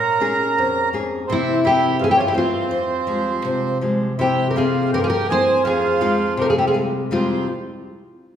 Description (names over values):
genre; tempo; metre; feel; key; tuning
fado-style ballad; 82 BPM; 2/4; rubato; F harmonic minor; A4 = 439 Hz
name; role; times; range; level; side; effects
fingerpicked twelve-string acoustic guitar; melody; 0.0-7.5 s; E4 to Db5; -20 LUFS; equal; none
accordion; second line; 0.0-7.5 s; C4 to Bb4; -23 LUFS; right 4 dB; none
nylon-string guitar; accompaniment; 0.0-7.5 s; F2 to E5; -22 LUFS; left 2 dB; none
room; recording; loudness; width
wet recital hall reverb, RT60 1.7 s; recorded in a church or concert hall; -17 LUFS; side -9 dB against mid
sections
0.0-4.2 A section; 4.2-7.1 B section; 7.1-8.4 C section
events
none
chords
0.0 Bbm7; 1.3 C7; 2.7 Fmadd9; 4.2 C7; 5.7 Fmadd9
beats
0.57 | 1.29 1.99 | 2.70 3.44 | 4.19 4.93 | 5.65 6.38 | 7.12